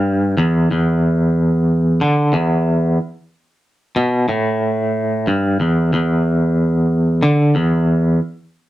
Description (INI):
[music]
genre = rock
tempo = 92 BPM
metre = 4/4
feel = straight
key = unclear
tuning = A4 = 440 Hz
[part]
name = twangy electric guitar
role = solo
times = 0.0-8.2 s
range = E2 to D3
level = -14 LUFS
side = equal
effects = tremolo
[sound]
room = light reverb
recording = rough rehearsal-room recording, warm saturation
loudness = -14 LUFS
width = side -15 dB against mid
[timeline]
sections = 0.0-8.7 A section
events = none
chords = none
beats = 0.05 | 0.70 1.35 2.01 2.66 | 3.31 3.97 4.62 5.27 | 5.92 6.58 7.23 7.88